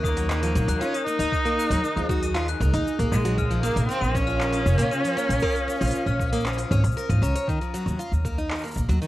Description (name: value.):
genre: folktronica.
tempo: 117 BPM.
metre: 4/4.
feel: straight.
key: Eb dorian.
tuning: A4 = 439 Hz.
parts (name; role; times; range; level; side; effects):
rich cello; melody; 0.0-7.0 s; Ab3 to Eb4; -27 LUFS; equal; cassette tape, tape echo.
glockenspiel with brass mallets; second line; 0.0-7.3 s; Bb5 to Eb7; -35 LUFS; left 8 dB; cassette tape, analog delay.
warbly tape-like pad; sustained chords; 0.0-7.5 s; Db4 to F5; -33 LUFS; left 1 dB; chorus, built-in reverb, cassette tape.
picked plugged-in twelve-string acoustic guitar; arpeggios; 0.0-9.1 s; Db3 to Db5; -29 LUFS; equal; cassette tape, tape echo.
upright bass; bass; 0.0-9.0 s; F1 to Eb2; -24 LUFS; equal; tube saturation.
electronic kick drum; drums; 0.0-8.9 s; none; -30 LUFS; equal; none.
organic electronic drum kit; drums; 0.1-9.1 s; handclaps, hi-hat, shaker; -36 LUFS; equal; overdrive.
room: light reverb.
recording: home recording on cassette.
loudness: -21 LUFS.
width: side -15 dB against mid.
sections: 0.0-7.5 A section; 7.5-9.1 B section.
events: none.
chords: 0.0 Ebmadd9; 3.4 Bbm; 7.5 Ebmadd9.